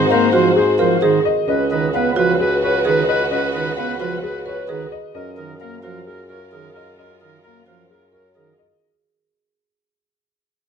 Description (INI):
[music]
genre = classical, minimalist pattern music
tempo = 131 BPM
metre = 4/4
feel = straight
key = F# major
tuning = A4 = 440 Hz
[part]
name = clear oboe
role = second line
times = 0.0-8.5 s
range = A#4 to B#4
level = -24 LUFS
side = left 1 dB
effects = none
[part]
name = pipe organ, sparkling flutes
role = accompaniment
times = 0.0-8.5 s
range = D#3 to B3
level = -22 LUFS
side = right 1 dB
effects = none
[part]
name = rich studio string section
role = sustained chords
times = 0.0-8.5 s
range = E#4 to B#4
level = -26 LUFS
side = left 1 dB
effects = none
[part]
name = warm bassoon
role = bass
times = 0.0-8.7 s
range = C#2 to G#2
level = -24 LUFS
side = equal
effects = none
[part]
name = warm grand piano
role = melody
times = 0.1-8.9 s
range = G#4 to E#5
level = -23 LUFS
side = left 11 dB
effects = none
[part]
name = marimba with medium mallets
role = arpeggios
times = 0.1-8.7 s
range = C#4 to B4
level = -21 LUFS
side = right 5 dB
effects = none
[sound]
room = moderate recital hall reverb, RT60 1.3 s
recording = close, detailed microphones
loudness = -15 LUFS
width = side -7 dB against mid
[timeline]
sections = 0.0-8.8 A section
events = fade-out 0.0-8.8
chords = 0.0 G#13; 1.5 C#9sus4; 5.1 F#maj9